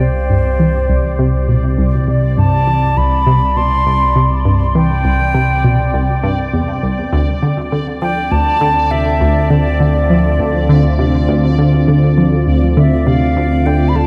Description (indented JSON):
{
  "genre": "ambient, sequencer-driven space music",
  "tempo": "101 BPM",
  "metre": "4/4",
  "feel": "straight",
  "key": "D minor",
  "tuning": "A4 = 440 Hz",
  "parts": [
    { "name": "concert flute", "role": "melody", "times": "0.0-14.1 s", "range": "C5 to C6", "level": "-21 LUFS", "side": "equal", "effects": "tape echo" },
    { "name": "sweeping resonant pad", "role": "sustained chords", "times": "0.0-14.1 s", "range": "C3 to D5", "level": "-23 LUFS", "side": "equal", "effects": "chorus" },
    { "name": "analog pluck", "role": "riff", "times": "0.0-14.1 s", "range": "C2 to F3", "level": "-18 LUFS", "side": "equal", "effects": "chorus, cassette tape, tape echo" },
    { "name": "fat analog bass", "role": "bass", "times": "0.0-14.1 s", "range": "C2 to D2", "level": "-18 LUFS", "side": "equal", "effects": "none" },
    { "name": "bubbling stepped-filter texture", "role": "texture", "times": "0.0-14.1 s", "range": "D5", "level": "-30 LUFS", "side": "equal", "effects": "chorus, built-in reverb" }
  ],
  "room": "moderate huge ambient reverb, RT60 8.3 s",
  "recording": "in a vast, echoing space",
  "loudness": "-14 LUFS",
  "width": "mono",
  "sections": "0.0-14.1 A section",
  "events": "fade-in on analog synth pad 0.0-14.1; filter sweep on synth arpeggio sound 0.0-14.1",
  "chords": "0.0 Csus2; 7.1 Dm7",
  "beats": "| 0.00 0.59 1.19 1.78 | 2.38 2.97 3.56 4.16 | 4.75 5.35 5.94 6.53 | 7.13 7.72 8.32 8.91 | 9.50 10.10 10.69 11.29 | 11.88 12.47 13.07 13.66"
}